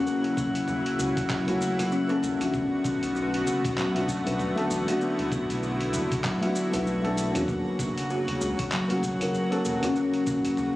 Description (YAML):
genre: organic downtempo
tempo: 97 BPM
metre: 4/4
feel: swing 59% on 16ths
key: B minor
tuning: A4 = 440 Hz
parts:
  - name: felt-muted upright piano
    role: accompaniment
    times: 0.0-10.8 s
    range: A3 to A4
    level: -32 LUFS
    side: left 1 dB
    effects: vintage 12-bit sampler grit, sidechain pumping, ping-pong delay
  - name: warm analog pad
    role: sustained chords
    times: 0.0-10.8 s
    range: C#3 to F#4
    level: -32 LUFS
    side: equal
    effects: chorus, tremolo, sidechain pumping
  - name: buzzing kalimba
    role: arpeggios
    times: 0.0-10.8 s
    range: F#3 to B4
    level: -28 LUFS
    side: left 1 dB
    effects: ping-pong delay
  - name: drifting glass-harmonics texture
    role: texture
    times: 0.0-10.8 s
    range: F#4 to F#5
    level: -35 LUFS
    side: left 1 dB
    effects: chorus, built-in reverb
  - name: dusty soul sampler-style drum kit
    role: drums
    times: 0.1-10.7 s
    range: cabasa, handclaps, hi-hat, toms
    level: -36 LUFS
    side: equal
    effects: studio ambience
  - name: electronic kick drum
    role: drums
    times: 0.4-10.4 s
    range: none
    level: -34 LUFS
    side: equal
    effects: studio ambience
  - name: round analog bass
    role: bass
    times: 0.6-10.8 s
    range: E1 to E2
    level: -34 LUFS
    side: equal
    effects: sidechain pumping
room: moderate lush hall reverb, RT60 2.7 s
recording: recorded on a phone in the room, club reverb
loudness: -24 LUFS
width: side -16 dB against mid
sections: 0.0-10.8 A section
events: none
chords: 0.0 F#; 2.5 Bm7; 7.5 F#